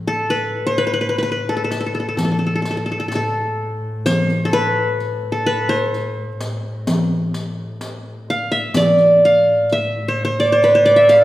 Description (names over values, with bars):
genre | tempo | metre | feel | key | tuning
Arabic maqam ensemble | 128 BPM (eighths) | 10/8 | straight | A maqam suznak | A4 = 438 Hz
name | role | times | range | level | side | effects
clear double bass | drone | 0.0-11.2 s | A2 | -27 LUFS | equal | none
qanun | melody | 0.1-11.2 s | A4 to F5+20c | -15 LUFS | equal | none
riq | percussion | 0.3-11.2 s | none | -27 LUFS | left 1 dB | none
darbuka | percussion | 1.2-11.2 s | none | -22 LUFS | left 1 dB | none
room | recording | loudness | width
wet recital hall reverb, RT60 1.7 s | recorded in a church or concert hall | -15 LUFS | side -15 dB against mid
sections
0.0-11.2 A section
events
none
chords
none